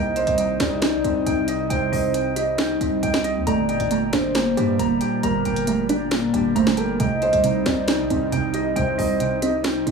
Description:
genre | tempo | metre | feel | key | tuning
hip hop, trap | 136 BPM | 4/4 | half-time | unclear | A4 = 443 Hz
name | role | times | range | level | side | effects
soft octave-layered synth lead | second line | 0.0-9.9 s | Bb4 to Eb5 | -26 LUFS | right 2 dB | chorus, phaser, dub echo
warm analog pad | sustained chords | 0.0-9.9 s | Bb2 to Eb4 | -28 LUFS | right 1 dB | chorus
mellow electric guitar | arpeggios | 0.0-9.9 s | G3 to Bb5 | -24 LUFS | left 2 dB | low-pass filter, dub echo
distorted 808-style bass | bass | 0.0-9.9 s | G1 to G2 | -29 LUFS | right 1 dB | distortion
trap drum kit | drums | 0.2-9.9 s | hi-hat, snare drum | -27 LUFS | right 2 dB | none
soft round pluck | accompaniment | 3.5-9.9 s | C3 to A4 | -24 LUFS | right 5 dB | chorus, low-pass filter, dub echo
room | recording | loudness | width
light reverb | echo-heavy mix, studio ambience | -19 LUFS | side -5 dB against mid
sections
0.0-9.9 A section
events
none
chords
0.0 Cm; 3.5 Gmadd9; 7.0 Cm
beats
0.38 0.82 1.26 | 1.70 2.15 2.59 3.03 | 3.47 3.91 4.35 4.79 | 5.23 5.67 6.12 6.56 | 7.00 7.44 7.88 8.32 | 8.76 9.20 9.64

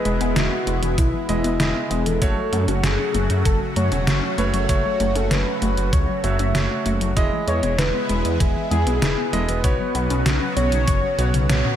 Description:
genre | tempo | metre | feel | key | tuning
synthwave | 97 BPM | 4/4 | straight | E major | A4 = 442 Hz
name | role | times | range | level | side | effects
warm velvety synth lead | melody | 0.0-11.8 s | E4 to E5 | -26 LUFS | left 1 dB | chorus, ping-pong delay
lush unison pad | sustained chords | 0.0-11.8 s | C#3 to F#4 | -27 LUFS | left 1 dB | chorus, phaser, sidechain pumping
warbly dusty pluck | arpeggios | 0.0-11.7 s | C#3 to F#4 | -28 LUFS | left 2 dB | chorus, ping-pong delay
warm electric grand piano | stabs | 0.0-11.8 s | G#3 to D#5 | -29 LUFS | right 4 dB | ping-pong delay
wide detuned saw bass | bass | 0.1-11.6 s | E1 to F#2 | -22 LUFS | equal | chorus, sidechain pumping
detuned 8-bit digital drum machine | drums | 0.1-11.8 s | hi-hat, snare drum, toms | -24 LUFS | equal | studio reverb, gated reverb
electronic kick drum | drums | 1.0-11.0 s | none | -21 LUFS | equal | studio reverb
room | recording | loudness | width
light reverb | faint mains hum | -18 LUFS | side -10 dB against mid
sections
0.0-11.8 A section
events
drum fill 11.5; band accent 11.5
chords
0.0 Emaj7; 2.2 F#m; 7.2 Emaj7; 9.6 Bsus2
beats
0.36 0.98 1.60 | 2.22 2.84 3.45 4.07 | 4.69 5.31 5.93 6.55 | 7.17 7.78 8.40 9.02 | 9.64 10.26 10.88 11.50

